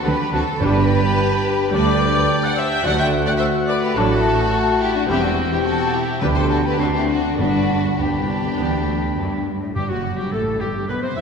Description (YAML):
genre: quick classical-period movement for symphony orchestra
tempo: 106 BPM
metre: 4/4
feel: rubato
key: G major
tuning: A4 = 440 Hz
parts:
  - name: rich studio violin section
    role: melody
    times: 0.0-11.2 s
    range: D4 to E5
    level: -26 LUFS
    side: left 5 dB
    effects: none
  - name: bright clarinet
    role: second line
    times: 0.0-11.2 s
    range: A3 to E5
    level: -29 LUFS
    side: left 1 dB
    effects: none
  - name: bright oboe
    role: second line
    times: 0.0-11.2 s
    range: F#4 to C6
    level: -30 LUFS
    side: right 2 dB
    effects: none
  - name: rich studio violin section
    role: second line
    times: 0.0-11.2 s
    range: F#4 to G5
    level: -25 LUFS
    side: left 2 dB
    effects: none
  - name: mellow hollow concert flute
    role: second line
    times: 0.1-11.2 s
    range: F#4 to G6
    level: -27 LUFS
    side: left 2 dB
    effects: none
  - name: dark studio viola section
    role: accompaniment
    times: 0.1-11.2 s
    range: F#3 to E4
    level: -27 LUFS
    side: right 1 dB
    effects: none
  - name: rich studio cello section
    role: bass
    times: 0.1-11.2 s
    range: C2 to E3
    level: -25 LUFS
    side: right 3 dB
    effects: none
  - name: rich studio double bass section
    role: bass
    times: 0.1-11.2 s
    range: E1 to E2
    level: -25 LUFS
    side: right 4 dB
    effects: none
  - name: dark French horn section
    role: sustained chords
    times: 0.6-11.2 s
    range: F#3 to G4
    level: -25 LUFS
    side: left 4 dB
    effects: none
  - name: timpani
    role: percussion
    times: 0.6-1.4, 6.2-10.6 s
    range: G2 to D3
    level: -28 LUFS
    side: right 2 dB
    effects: none
room: wet scoring stage reverb, RT60 1.7 s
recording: heard from further back in the room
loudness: -17 LUFS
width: side -6 dB against mid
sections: 0.0-9.8 A section; 9.8-11.2 A section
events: none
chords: 0.0 D7; 0.6 G; 2.8 D; 5.1 C/E; 6.2 G/D; 6.8 D7; 7.4 G; 9.8 Gsus2